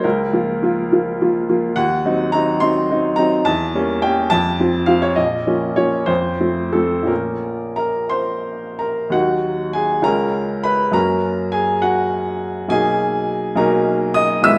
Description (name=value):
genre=classical, romantic character piece for solo piano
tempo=56-72 BPM (dotted quarters)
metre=6/8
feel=rubato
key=Bb minor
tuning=A4 = 440 Hz
part: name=clear upright piano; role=solo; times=0.0-14.6 s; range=G#1 to E6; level=-18 LUFS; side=equal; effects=none
room=wet recital hall reverb, RT60 1.5 s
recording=recorded in a church or concert hall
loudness=-18 LUFS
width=mono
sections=0.0-9.1 A section; 9.1-14.6 B section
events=none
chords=0.0 Bbm/Db; 1.8 Cdim/Eb; 3.5 Edim7; 4.3 F; 5.2 Bbm; 6.1 F; 7.1 Bbm; 9.1 Ebm; 10.1 Db; 10.9 Gb; 12.7 Bmaj7